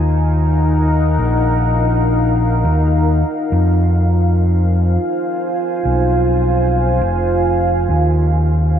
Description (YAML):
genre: ambient dub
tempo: 103 BPM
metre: 4/4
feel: swing 59% on 16ths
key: Eb minor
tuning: A4 = 440 Hz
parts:
  - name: deep dark ambient pad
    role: sustained chords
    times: 0.0-8.8 s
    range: Eb4 to Ab5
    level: -18 LUFS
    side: equal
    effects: chorus, built-in reverb
  - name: overdriven fingered electric bass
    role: bass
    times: 0.0-8.8 s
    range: F1 to F2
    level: -14 LUFS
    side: equal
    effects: tube saturation
room: light reverb, digital ambience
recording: none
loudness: -13 LUFS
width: side -9 dB against mid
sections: 0.0-8.8 A section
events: none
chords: 0.0 Ebm; 3.2 Fdim; 7.9 Eb5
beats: 0.32 | 0.90 1.48 2.06 2.65 | 3.23 3.81 4.40 4.98 | 5.56 6.14 6.73 7.31 | 7.89 8.47